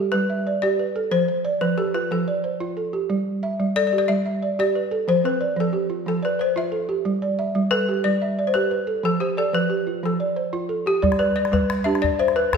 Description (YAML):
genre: west african traditional, West African string and xylophone music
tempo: 121 BPM (dotted quarters)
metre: 12/8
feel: straight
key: G mixolydian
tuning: A4 = 440 Hz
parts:
  - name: balafon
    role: arpeggios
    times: 0.0-12.6 s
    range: F3 to E5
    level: -22 LUFS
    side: right 3 dB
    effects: none
  - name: balafon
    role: melody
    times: 0.1-12.6 s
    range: G4 to E5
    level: -23 LUFS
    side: left 5 dB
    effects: none
  - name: calabash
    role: percussion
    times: 11.0-12.6 s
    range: none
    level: -26 LUFS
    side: left 4 dB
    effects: none
room: wet recital hall reverb, RT60 1.5 s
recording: recorded in a church or concert hall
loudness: -20 LUFS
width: side -6 dB against mid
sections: 0.0-11.0 A section; 11.0-12.6 B section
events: none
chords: 0.0 G; 1.1 F; 3.1 G; 5.1 F; 7.1 G; 9.0 F; 11.0 G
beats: 0.14 0.64 | 1.13 1.62 2.12 2.61 | 3.10 3.60 4.09 4.58 | 5.08 5.57 6.07 6.56 | 7.06 7.56 8.05 8.55 | 9.04 9.54 10.04 10.54 | 11.03 11.53 12.03 12.52